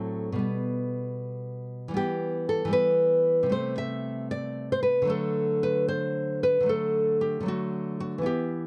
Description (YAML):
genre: classical, baroque-style dance for nylon-string guitar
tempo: 76 BPM (dotted quarters)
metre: 12/8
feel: rubato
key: unclear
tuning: A4 = 441 Hz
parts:
  - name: nylon-string guitar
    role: solo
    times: 0.0-8.7 s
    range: A2 to E5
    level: -27 LUFS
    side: equal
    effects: none
room: moderate booth ambience, RT60 0.2 s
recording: none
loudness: -27 LUFS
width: mono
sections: 0.0-8.7 A section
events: none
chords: 0.4 G/B; 2.0 Em; 3.5 Am7/C; 5.1 D